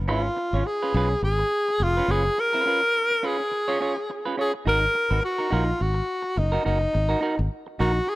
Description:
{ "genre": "disco", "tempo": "105 BPM", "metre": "4/4", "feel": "swing 56% on 16ths", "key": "unclear", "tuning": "A4 = 440 Hz", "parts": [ { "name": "fingered electric bass", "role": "bass", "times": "0.0-8.0 s", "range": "E#1 to B1", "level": "-24 LUFS", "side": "equal", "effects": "none" }, { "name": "breathy alto saxophone", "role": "melody", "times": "0.1-8.2 s", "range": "D#4 to A#4", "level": "-24 LUFS", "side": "equal", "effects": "none" }, { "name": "semi-hollow electric guitar", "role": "accompaniment", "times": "0.1-8.1 s", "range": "C#4 to C#5", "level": "-29 LUFS", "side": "right 3 dB", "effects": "none" } ], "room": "light reverb, small room reverb", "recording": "none", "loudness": "-21 LUFS", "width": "side -19 dB against mid", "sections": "0.0-4.7 A section; 4.7-8.2 A section", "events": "none", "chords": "0.1 C#7; 4.7 Bmaj7 (rootless)" }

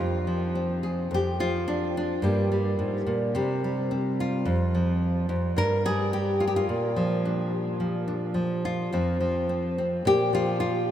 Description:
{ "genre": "folk, solo fingerstyle acoustic guitar", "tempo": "108 BPM", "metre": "4/4", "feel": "straight", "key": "F dorian", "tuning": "A4 = 442 Hz", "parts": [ { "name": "nylon-string guitar", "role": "solo", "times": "0.0-10.9 s", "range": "F2 to Bb4", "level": "-24 LUFS", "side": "equal", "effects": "none" } ], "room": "wet huge ambient reverb, RT60 7.7 s", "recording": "in a vast, echoing space", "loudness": "-24 LUFS", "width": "side -10 dB against mid", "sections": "0.0-10.9 A section", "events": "none", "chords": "0.0 Fm; 1.1 N.C.; 2.2 Gm; 3.3 C5; 4.5 N.C.; 6.7 Bb; 8.9 F5; 10.1 Bb5" }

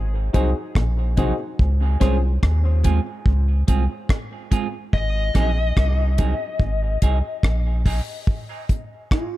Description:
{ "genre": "dub reggae", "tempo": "72 BPM", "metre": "4/4", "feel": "straight", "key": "Db major", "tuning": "A4 = 441 Hz", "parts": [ { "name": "soft dub sub bass", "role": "bass", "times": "0.0-8.0 s", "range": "Ab1 to Eb2", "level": "-19 LUFS", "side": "equal", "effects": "none" }, { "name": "semi-hollow electric guitar", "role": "accompaniment", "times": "0.3-8.8 s", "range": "Gb3 to Ab4", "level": "-30 LUFS", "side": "right 7 dB", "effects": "high-pass filter, low-pass filter, dub echo" }, { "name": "warm upright piano", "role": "stabs", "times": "0.3-2.2, 8.7-8.9 s", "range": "Db4 to C5", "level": "-30 LUFS", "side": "left 5 dB", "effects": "high-pass filter, low-pass filter, dub echo" }, { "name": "deep reggae drum kit", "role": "drums", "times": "0.3-9.3 s", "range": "hi-hat, kick drum, rim click", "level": "-20 LUFS", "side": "equal", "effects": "none" }, { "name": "mellow electric guitar", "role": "arpeggios", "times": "0.8-1.3 s", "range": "Bb2 to C3", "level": "-33 LUFS", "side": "left 3 dB", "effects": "none" }, { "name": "dark smooth lead guitar", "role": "melody", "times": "4.9-9.4 s", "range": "F4 to Eb5", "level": "-29 LUFS", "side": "left 5 dB", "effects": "overdrive, low-pass filter, dub echo" } ], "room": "small room ambience", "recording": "dark, warm production", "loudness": "-18 LUFS", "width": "side -16 dB against mid", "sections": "0.0-8.3 A section; 8.3-9.4 B section", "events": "break 0.0-4.9; filter sweep 4.9-9.4", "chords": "0.0 Ab7; 1.6 Dbmaj7; 4.9 Ab7; 8.3 Dbmaj7" }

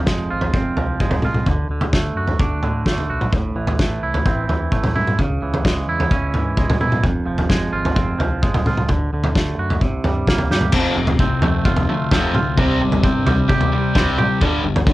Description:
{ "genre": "quiet-loud alternative rock", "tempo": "130 BPM", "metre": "4/4", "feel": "straight", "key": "unclear", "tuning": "A4 = 440 Hz", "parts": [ { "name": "twangy electric guitar", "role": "arpeggios", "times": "0.0-14.4 s", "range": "F2 to G4", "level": "-22 LUFS", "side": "right 3 dB", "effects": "cassette tape" }, { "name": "growling fingered electric bass", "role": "bass", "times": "0.0-14.9 s", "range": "F1 to C3", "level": "-25 LUFS", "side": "equal", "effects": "overdrive" }, { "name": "loose indie drum kit", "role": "drums", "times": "0.1-14.9 s", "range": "crash cymbal, kick drum, snare drum, toms", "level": "-19 LUFS", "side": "equal", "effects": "cassette tape" }, { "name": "raw garage guitar", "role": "riff", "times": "10.7-14.9 s", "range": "F2 to C4", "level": "-24 LUFS", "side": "right 3 dB", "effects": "overdrive, cassette tape" }, { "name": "thick fuzz guitar", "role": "riff", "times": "10.7-14.9 s", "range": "F2 to C4", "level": "-22 LUFS", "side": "left 7 dB", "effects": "distortion, cassette tape" } ], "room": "little or no reverb", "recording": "home recording on cassette", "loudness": "-16 LUFS", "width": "side -17 dB against mid", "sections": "0.0-10.7 A section; 10.7-14.9 B section", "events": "drum fill 10.5", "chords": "0.0 Fm; 1.5 D; 3.3 Am; 5.2 C#m; 7.0 Fm; 8.9 D; 9.8 C5; 10.7 F; 12.6 C5; 14.4 G5" }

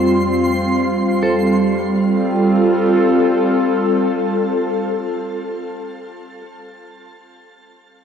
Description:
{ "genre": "ambient", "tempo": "free time", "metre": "none", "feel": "none", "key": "F major", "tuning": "A4 = 440 Hz", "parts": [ { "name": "warbly tape-like pad", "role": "sustained chords", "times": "0.0-6.4 s", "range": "F2 to C5", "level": "-16 LUFS", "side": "equal", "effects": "chorus, built-in reverb, shimmer reverb" }, { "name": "clean electric guitar", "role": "arpeggios", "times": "0.0-5.9 s", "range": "C4 to C6", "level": "-28 LUFS", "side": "equal", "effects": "analog delay, shimmer reverb" }, { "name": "twinkling granular texture", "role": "texture", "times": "0.0-1.3 s", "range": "C6", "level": "-28 LUFS", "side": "right 3 dB", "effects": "built-in reverb, shimmer reverb" } ], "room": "wet echo chamber reverb, RT60 2.4 s", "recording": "echo-heavy mix", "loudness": "-14 LUFS", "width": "side -7 dB against mid", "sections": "0.0-1.2 A section; 1.2-5.9 B section", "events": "none", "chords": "0.0 N.C.; 1.2 F" }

